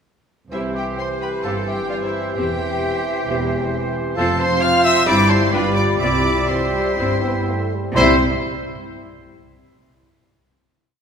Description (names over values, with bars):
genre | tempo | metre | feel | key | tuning
quick classical-period movement for symphony orchestra | 120-136 BPM | 4/4 | rubato | C major | A4 = 440 Hz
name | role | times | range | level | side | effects
warm chamber violin section | melody | 0.5-8.2 s | E5 to F6 | -26 LUFS | left 2 dB | none
bright clarinet | second line | 0.5-8.2 s | E4 to G4 | -29 LUFS | right 1 dB | none
bright oboe | second line | 0.5-8.2 s | C5 to E5 | -28 LUFS | right 2 dB | none
clear symphonic violin section | second line | 0.5-8.2 s | E4 to F5 | -29 LUFS | left 2 dB | none
hollow concert flute | second line | 0.5-8.2 s | C5 to C6 | -28 LUFS | left 3 dB | none
rich chamber viola section | accompaniment | 0.5-8.2 s | C4 to G4 | -28 LUFS | equal | none
warm bassoon | accompaniment | 0.5-8.2 s | E3 to G3 | -27 LUFS | right 2 dB | none
dark French horn section | sustained chords | 0.5-8.2 s | E3 to G4 | -26 LUFS | left 3 dB | none
clear trumpet | stabs | 0.5-8.2 s | E4 to F5 | -24 LUFS | right 2 dB | none
warm chamber double bass section | bass | 0.5-8.2 s | E1 to C2 | -27 LUFS | right 2 dB | none
warm symphonic cello section | bass | 0.5-8.2 s | C2 to C3 | -26 LUFS | right 1 dB | none
room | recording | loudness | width
wet concert hall reverb, RT60 2.3 s | minimal, uncompressed stereo recording | -16 LUFS | side -6 dB against mid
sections
0.5-8.0 A section; 8.0-9.9 final chord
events
none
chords
0.5 C; 2.4 C/E; 4.2 F5; 5.1 C/G; 5.5 G7; 6.0 C